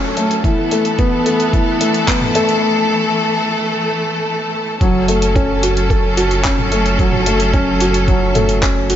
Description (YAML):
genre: piano and strings electronica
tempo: 110 BPM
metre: 4/4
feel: straight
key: F# minor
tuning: A4 = 440 Hz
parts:
  - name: clear studio string section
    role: sustained chords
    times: 0.0-9.0 s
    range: E3 to A4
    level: -18 LUFS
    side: equal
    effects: sidechain pumping
  - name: felt-muted upright piano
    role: riff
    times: 0.0-9.0 s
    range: E3 to A4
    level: -17 LUFS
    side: left 1 dB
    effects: tape echo
  - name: warm sub bass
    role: bass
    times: 0.0-9.0 s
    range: F#1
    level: -20 LUFS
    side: equal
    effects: sidechain pumping, high-pass filter
  - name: deep house drum kit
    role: drums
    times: 0.2-9.0 s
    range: handclaps, hi-hat, toms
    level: -22 LUFS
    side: equal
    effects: none
  - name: electronic kick drum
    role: drums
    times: 0.4-8.7 s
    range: none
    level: -17 LUFS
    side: equal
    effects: none
room: moderate lush hall reverb, RT60 1.9 s, digital ambience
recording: nothing above 7.7 kHz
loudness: -13 LUFS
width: side -10 dB against mid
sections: 0.0-4.8 A section; 4.8-9.0 B section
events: build-up 0.0-4.8; break 2.6-4.8; drop 4.8-9.0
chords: 0.4 Esus4/F#; 4.8 F#m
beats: | 0.45 0.99 1.54 2.08 | 2.63 3.17 3.72 4.27 | 4.81 5.36 5.90 6.45 | 6.99 7.54 8.08 8.63